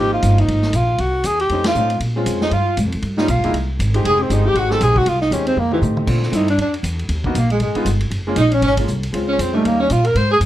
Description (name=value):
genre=jazz, small-group swing and bop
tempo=236 BPM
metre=4/4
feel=swing 59% on 8ths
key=F minor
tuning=A4 = 440 Hz
part: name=breathy tenor saxophone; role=melody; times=0.0-10.4 s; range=E3 to C5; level=-19 LUFS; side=left 1 dB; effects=none
part: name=clear baby grand piano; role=accompaniment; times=0.0-9.9 s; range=F3 to G4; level=-23 LUFS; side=equal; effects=none
part: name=upright bass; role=bass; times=0.0-10.5 s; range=F1 to Bb2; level=-19 LUFS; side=equal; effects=none
part: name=vintage drum kit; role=drums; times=0.2-10.5 s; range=crash cymbal, hi-hat, kick drum, ride cymbal, snare drum, toms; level=-27 LUFS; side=equal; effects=none
part: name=bright alto saxophone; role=second line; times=1.7-10.4 s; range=E3 to C5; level=-23 LUFS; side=right 4 dB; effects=none
room=light reverb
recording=none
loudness=-15 LUFS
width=side -13 dB against mid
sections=0.0-6.1 A section; 6.1-10.5 B section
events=band accent 1.6; drum fill 5.6-6.1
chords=0.0 Ab6; 1.0 Cdim; 1.5 F7b13; 2.0 Bbm7; 3.0 Gm7b5; 3.5 Cm; 4.0 Fm7; 5.6 F7; 6.1 Bbmaj7; 7.1 Abm9; 7.6 G7b9b13; 8.1 Gbmaj9; 9.1 Bbm7; 9.6 Eb7